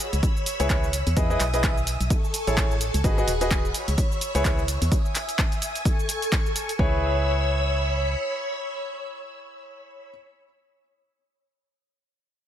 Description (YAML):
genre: piano house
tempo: 128 BPM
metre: 4/4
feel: swing 58% on 16ths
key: C# minor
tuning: A4 = 439 Hz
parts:
  - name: string machine, violins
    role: sustained chords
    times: 0.0-10.1 s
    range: G#4 to E6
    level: -30 LUFS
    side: equal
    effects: ensemble chorus, sidechain pumping
  - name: punchy analog drum machine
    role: drums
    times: 0.0-6.8 s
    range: handclaps, hi-hat, shaker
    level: -29 LUFS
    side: right 1 dB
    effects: overdrive
  - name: organ-like FM bass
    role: bass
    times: 0.1-8.2 s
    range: D#1 to E2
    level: -25 LUFS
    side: equal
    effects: sidechain pumping
  - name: electronic kick drum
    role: drums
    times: 0.2-6.9 s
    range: none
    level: -24 LUFS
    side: equal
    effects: overdrive
  - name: clear grand piano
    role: riff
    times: 0.6-10.1 s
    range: E4 to D#5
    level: -29 LUFS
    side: equal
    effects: sidechain pumping, digital delay
room: little or no reverb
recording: none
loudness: -22 LUFS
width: side -10 dB against mid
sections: 0.0-6.8 A section; 6.8-10.5 B section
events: drop 0.0-6.8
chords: 0.0 C#m7; 1.2 Emaj7; 2.1 Amaj7; 3.0 G#m7; 3.7 C#m7; 4.9 Emaj7; 5.9 Amaj7; 6.8 C#m7